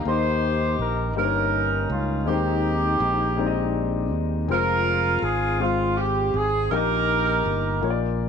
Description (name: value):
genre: gospel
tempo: 54 BPM (dotted quarters)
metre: 6/8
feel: straight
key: Eb major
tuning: A4 = 440 Hz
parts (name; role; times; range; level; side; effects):
- warm concert grand piano; accompaniment; 0.0-8.3 s; G2 to Eb5; -27 LUFS; left 13 dB; none
- modern bright fingered electric bass; bass; 0.0-8.3 s; F1 to Eb2; -26 LUFS; right 1 dB; none
- warm horn section; melody; 0.1-8.2 s; C4 to C5; -23 LUFS; right 2 dB; none
room: light reverb, digital ambience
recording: 1960s-style stereo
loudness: -20 LUFS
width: side -6 dB against mid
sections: 0.1-8.3 A section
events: none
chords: 0.1 Eb; 1.2 Eb7/G; 2.3 Ab; 4.5 Fm; 6.7 Eb/Bb